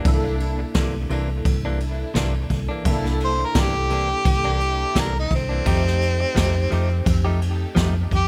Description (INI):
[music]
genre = straight-eighth soul blues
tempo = 86 BPM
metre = 4/4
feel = swing 56% on 16ths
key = C mixolydian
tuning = A4 = 440 Hz
[part]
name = barky tine electric piano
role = accompaniment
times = 0.0-8.3 s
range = A3 to A4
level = -33 LUFS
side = equal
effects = ensemble chorus
[part]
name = direct-recorded clean electric guitar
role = stabs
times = 0.0-8.2 s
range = C3 to G4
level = -33 LUFS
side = equal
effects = tape echo
[part]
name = vintage muted fingered electric bass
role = bass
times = 0.0-8.3 s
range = C2 to F2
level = -25 LUFS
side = equal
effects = none
[part]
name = jazz brush drum kit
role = drums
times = 0.0-8.3 s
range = kick drum, ride cymbal, snare drum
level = -26 LUFS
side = equal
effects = none
[part]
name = dark symphonic string section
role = sustained chords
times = 0.1-8.0 s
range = D4 to A4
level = -40 LUFS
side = equal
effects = none
[part]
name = clear harmonica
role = melody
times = 3.2-8.3 s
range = C4 to C5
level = -26 LUFS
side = equal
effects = overdrive
[sound]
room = light reverb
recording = none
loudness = -21 LUFS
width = mono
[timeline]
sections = 0.0-8.3 A section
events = harmonica solo 0.0-8.3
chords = 0.0 C9; 5.7 F9